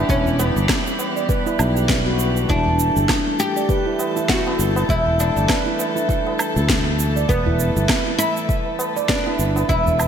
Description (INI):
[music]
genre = organic downtempo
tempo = 100 BPM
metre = 4/4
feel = swing 57% on 16ths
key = E minor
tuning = A4 = 439 Hz
[part]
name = oud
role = melody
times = 0.0-10.1 s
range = B3 to G4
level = -23 LUFS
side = left 1 dB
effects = ping-pong delay
[part]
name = warm studio string section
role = sustained chords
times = 0.0-10.1 s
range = E3 to A4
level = -29 LUFS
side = left 2 dB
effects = sidechain pumping
[part]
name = handpan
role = arpeggios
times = 0.0-9.9 s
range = E4 to D5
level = -25 LUFS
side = right 4 dB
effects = digital delay
[part]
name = sustaining fretless electric bass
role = bass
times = 0.0-10.1 s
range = E1 to D2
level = -21 LUFS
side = equal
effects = sidechain pumping
[part]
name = drifting glass-harmonics texture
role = texture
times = 0.0-10.1 s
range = G3 to G6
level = -32 LUFS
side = left 3 dB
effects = chorus, built-in reverb
[part]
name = electronic kick drum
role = drums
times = 0.1-9.8 s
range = none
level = -23 LUFS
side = left 1 dB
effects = none
[part]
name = electronic shaker, snare drum and woodblock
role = drums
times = 0.1-10.1 s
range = none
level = -24 LUFS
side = equal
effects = gated reverb
[part]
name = tabla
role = percussion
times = 0.3-10.1 s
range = none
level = -30 LUFS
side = left 1 dB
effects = none
[sound]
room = moderate lush hall reverb, RT60 2.6 s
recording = bright 1980s-style digital production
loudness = -17 LUFS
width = side -8 dB against mid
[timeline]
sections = 0.0-10.1 A section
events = none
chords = 0.0 Em7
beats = | 0.09 0.69 1.29 1.89 | 2.49 3.09 3.69 4.29 | 4.89 5.49 6.09 6.69 | 7.29 7.89 8.49 9.09 | 9.69